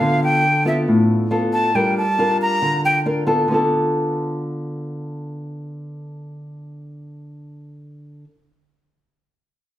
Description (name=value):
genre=bossa nova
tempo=138 BPM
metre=4/4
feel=straight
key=D minor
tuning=A4 = 440 Hz
part: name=breathy bright jazz flute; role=melody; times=0.0-3.0 s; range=E5 to Bb5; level=-18 LUFS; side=equal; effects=none
part: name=nylon-string guitar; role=accompaniment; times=0.0-8.3 s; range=A2 to Bb4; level=-20 LUFS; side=left 1 dB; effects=none
room=wet large studio reverb, RT60 1.1 s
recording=heard from further back in the room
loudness=-16 LUFS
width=side -13 dB against mid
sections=0.0-3.5 A section; 3.5-7.0 B section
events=flute solo 0.0-3.5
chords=0.0 Dm6; 1.7 Gm7; 3.5 Dm6